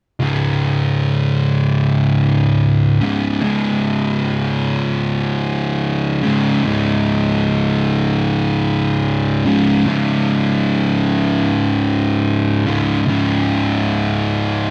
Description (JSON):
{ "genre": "metal", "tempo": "74 BPM", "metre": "4/4", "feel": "straight", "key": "unclear", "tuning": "A4 = 444 Hz", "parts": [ { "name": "fuzz guitar", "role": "solo", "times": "0.2-14.7 s", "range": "C#2 to C#3", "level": "-17 LUFS", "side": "equal", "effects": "distortion, tape echo" } ], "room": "light reverb", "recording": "dark, warm production", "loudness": "-17 LUFS", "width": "mono", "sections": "0.2-13.1 A section; 13.1-14.7 B section", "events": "none", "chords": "0.2 C#5", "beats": "| 0.19 1.00 1.80 2.61 | 3.42 4.22 5.03 5.83 | 6.64 7.45 8.25 9.06 | 9.86 10.66 11.47 12.27 | 13.07 13.87 14.67" }